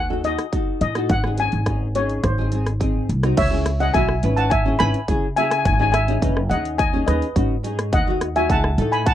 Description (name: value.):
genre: calypso.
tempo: 106 BPM.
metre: 4/4.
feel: straight.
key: C# minor.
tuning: A4 = 440 Hz.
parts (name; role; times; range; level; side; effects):
steel pan; melody; 0.0-9.1 s; B4 to B5; -22 LUFS; left 1 dB; none.
upright bass; bass; 0.0-9.1 s; F#1 to C#3; -22 LUFS; equal; none.
nylon-string guitar; accompaniment; 0.1-9.0 s; A3 to B4; -25 LUFS; left 1 dB; double-tracked left and right.
big-room dance drum kit; drums; 0.2-9.1 s; crash cymbal, hi-hat, kick drum, rim click; -23 LUFS; equal; none.
room: little or no reverb.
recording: dry, close 1970s-style studio recording.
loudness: -18 LUFS.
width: side -11 dB against mid.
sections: 0.0-3.4 A section; 3.4-9.1 B section.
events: none.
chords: 0.0 D#dim; 1.1 G#sus4; 2.2 G#7; 3.4 C#m7; 5.7 G#sus4; 7.9 D#dim.